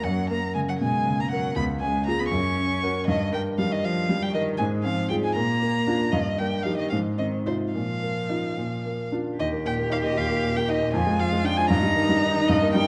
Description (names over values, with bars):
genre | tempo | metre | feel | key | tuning
quick classical-period movement for piano trio | 78 BPM (dotted quarters) | 6/8 | rubato | Eb major from 3.1 s | A4 = 441 Hz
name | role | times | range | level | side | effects
warm violin | melody | 0.0-12.9 s | C5 to Db6 | -30 LUFS | equal | none
rich cello | second line | 0.0-12.9 s | C3 to G4 | -32 LUFS | equal | none
clear grand piano | accompaniment | 0.0-12.9 s | Db2 to Bb4 | -27 LUFS | equal | none
room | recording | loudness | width
moderate recital hall reverb, RT60 1.4 s | vinyl crackle, nothing above 10.8 kHz | -25 LUFS | mono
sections
0.0-9.4 A section; 9.4-12.9 B section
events
none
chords
0.0 Gb; 1.6 Db; 2.3 Gb; 3.1 Ebadd9/G; 4.6 Fm/Ab; 5.4 Bb; 6.1 Eb/G; 6.9 Fm7/Ab; 7.8 Bbsus4; 8.6 Bb; 9.4 Eb; 10.9 Ddim/F; 11.7 Eb/G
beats
| 0.05 0.81 | 1.57 2.32 | 3.08 3.83 | 4.59 5.36 | 6.13 6.91 | 7.75 8.57 | 9.39 10.17 | 10.95 11.72 | 12.49